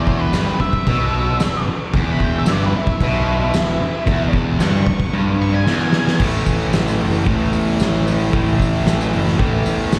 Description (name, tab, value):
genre	garage rock duo or trio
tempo	113 BPM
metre	4/4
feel	straight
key	unclear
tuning	A4 = 439 Hz
part	octave-fuzz lead guitar	melody	0.0-6.2 s	E4 to D6	-27 LUFS	equal	distortion
part	fuzz guitar	riff	0.0-10.0 s	E2 to A3	-21 LUFS	equal	distortion
part	fuzz picked electric bass	bass	0.0-10.0 s	E1 to E2	-25 LUFS	equal	overdrive
part	oversized low-tuned drum kit	drums	0.1-10.0 s	crash cymbal, hi-hat, kick drum, snare drum	-22 LUFS	equal	none
part	tambourine	percussion	0.3-10.0 s	none	-40 LUFS	equal	none
room	light reverb, studio reverb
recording	live gig heard through the venue's PA, recital hall reverb, vinyl crackle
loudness	-18 LUFS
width	mono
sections	0.0-6.2 A section; 6.2-10.0 B section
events	lead electric guitar solo 0.0-6.2; drum fill 5.7-6.2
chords	0.0 E5; 6.2 A5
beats	0.34 0.88 1.41 | 1.94 2.48 3.01 3.54 | 4.07 4.61 5.14 5.67 | 6.20 6.74 7.27 7.80 | 8.33 8.86 9.40 9.93